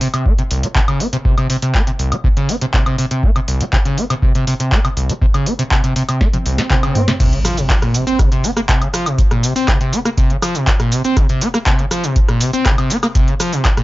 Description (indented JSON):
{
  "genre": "acid house",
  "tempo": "121 BPM",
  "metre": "4/4",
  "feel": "straight",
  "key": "unclear",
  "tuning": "A4 = 440 Hz",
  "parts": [
    { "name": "overdriven acid bass", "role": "riff", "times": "0.0-13.8 s", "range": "C2 to C4", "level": "-18 LUFS", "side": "equal", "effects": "distortion, wide subtle chorus, analog delay" },
    { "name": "booming analog drum machine", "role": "drums", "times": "0.0-13.8 s", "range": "crash cymbal, handclaps, hi-hat, rim click, shaker, snare drum, toms, woodblock", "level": "-20 LUFS", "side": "equal", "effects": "none" },
    { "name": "electronic kick drum", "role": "drums", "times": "0.3-13.7 s", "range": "none", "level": "-16 LUFS", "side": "equal", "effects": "none" },
    { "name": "swell and impact", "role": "sound effects", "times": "6.4-9.2 s", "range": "none", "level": "-24 LUFS", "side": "right 1 dB", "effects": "none" }
  ],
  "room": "light reverb",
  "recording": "dry, gritty hardware recording, cassette tape, nothing above 7.5 kHz",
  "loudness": "-13 LUFS",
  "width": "side -18 dB against mid",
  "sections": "0.0-7.2 A section; 7.2-13.8 B section",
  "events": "drum fill 6.2-7.2; swell 6.4-7.2; drop 7.2-13.8; impact 7.2-9.2",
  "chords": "none",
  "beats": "0.26 0.76 | 1.25 1.75 2.24 2.74 | 3.23 3.73 4.23 4.72 | 5.22 5.71 6.21 6.71 | 7.20 7.70 8.19 8.69 | 9.18 9.68 10.18 10.67 | 11.17 11.66 12.16 12.65 | 13.15 13.65"
}